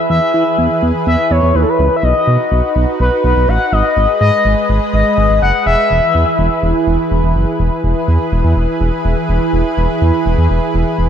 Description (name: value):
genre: synth-pop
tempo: 124 BPM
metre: 4/4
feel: straight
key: unclear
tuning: A4 = 440 Hz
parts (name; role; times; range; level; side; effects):
- expressive synth lead; melody; 0.0-6.6 s; A4 to F#5; -14 LUFS; left 3 dB; chorus, ping-pong delay
- lush unison pad; sustained chords; 0.0-11.1 s; E3 to D#5; -17 LUFS; right 1 dB; chorus
- smooth synth bass; bass; 0.1-11.1 s; E1 to E3; -14 LUFS; equal; none
room: moderate plate reverb, RT60 2.8 s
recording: dreamy mix soaked in reverb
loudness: -11 LUFS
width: side -8 dB against mid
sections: 0.1-7.8 A section; 7.8-11.1 B section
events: none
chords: 0.1 E; 2.0 B; 4.0 G#m; 5.9 E